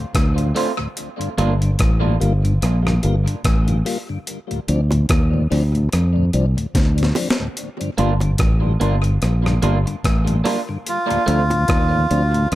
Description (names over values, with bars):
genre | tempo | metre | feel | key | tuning
dub reggae | 73 BPM | 4/4 | swing 57% on 16ths | G minor | A4 = 440 Hz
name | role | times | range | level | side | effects
mellow tonewheel organ | accompaniment | 0.0-12.4 s | D2 to F4 | -26 LUFS | left 2 dB | slow rotary speaker, tape echo
breakbeat sampler-style drum kit | drums | 0.1-12.6 s | hi-hat, kick drum, rim click, snare drum | -22 LUFS | equal | tape echo
fingered electric bass | bass | 0.2-12.6 s | G1 to F2 | -17 LUFS | equal | none
electric guitar through a small old amp | accompaniment | 0.6-1.5, 8.0-11.4 s | A3 to F4 | -26 LUFS | right 3 dB | tape echo
bongos | percussion | 4.9-12.3 s | none | -30 LUFS | right 2 dB | none
melodica | melody | 10.9-12.5 s | F4 | -20 LUFS | right 1 dB | tape echo
room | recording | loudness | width
light reverb, digital ambience | echo-heavy mix | -16 LUFS | side -15 dB against mid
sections
0.0-12.6 A section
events
break 0.0-10.9; drum fill 6.7-7.6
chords
0.0 Dm7; 1.0 Gm7; 4.3 Dm7; 7.6 Gm7; 10.9 Dm7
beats
0.14 | 0.97 1.79 2.62 3.44 | 4.27 5.09 5.92 6.74 | 7.57 8.39 9.22 10.04 | 10.87 11.69 12.51